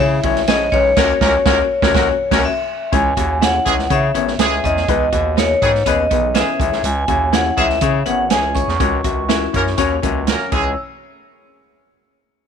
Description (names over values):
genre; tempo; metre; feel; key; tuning
uptempo 1960s-style soul; 122 BPM; 4/4; straight; C# dorian; A4 = 440 Hz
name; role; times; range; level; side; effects
vibraphone with medium hard mallets; melody; 0.0-10.8 s; C#5 to E6; -18 LUFS; left 1 dB; none
warm baby grand piano; accompaniment; 0.0-10.7 s; G#3 to E5; -21 LUFS; left 12 dB; tube saturation
vintage hollow-body jazz guitar; riff; 0.0-10.8 s; A#3 to F#4; -26 LUFS; left 14 dB; none
growling FM bass; bass; 0.0-10.8 s; G#1 to C#3; -22 LUFS; right 1 dB; none
swinging big-band drum kit; drums; 0.2-10.6 s; crash cymbal, hi-hat, kick drum, ride cymbal, snare drum; -20 LUFS; right 6 dB; none
mellow horn section; second line; 1.0-10.7 s; D#3 to A#4; -22 LUFS; right 1 dB; none
room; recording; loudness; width
light reverb, small room ambience; 1960s-style stereo with parts hard left and right; -14 LUFS; side -7 dB against mid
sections
0.0-2.9 A section; 2.9-10.8 B section; 10.8-12.5 C section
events
band accent 1.0-2.9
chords
0.0 C#m; 1.0 F#/C#; 2.9 C#m; 4.9 G#m/C#; 6.6 C#m; 8.8 F#/C#; 10.5 C#m; 10.8 N.C.